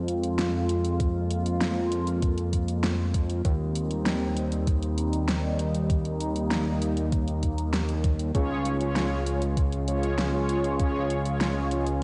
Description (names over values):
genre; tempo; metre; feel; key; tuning
synthwave; 98 BPM; 4/4; straight; F minor; A4 = 440 Hz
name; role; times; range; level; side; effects
phased analog pad; sustained chords; 0.0-12.0 s; G3 to F4; -33 LUFS; equal; phaser, chorus, sidechain pumping, cassette tape
fat analog bass; bass; 0.0-12.0 s; Db2 to F2; -30 LUFS; equal; none
pop drum kit; drums; 0.1-12.0 s; hi-hat, snare drum; -34 LUFS; equal; overdrive, cassette tape
electronic kick drum; drums; 1.0-10.9 s; none; -28 LUFS; equal; cassette tape
mellow synth brass; stabs; 8.3-11.9 s; F4 to Db5; -33 LUFS; equal; chorus, cassette tape, analog delay
room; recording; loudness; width
light reverb; home recording on cassette, nothing above 10.3 kHz; -27 LUFS; mono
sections
0.0-12.0 A section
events
none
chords
0.0 Fm; 3.4 Cm/Eb; 8.3 Db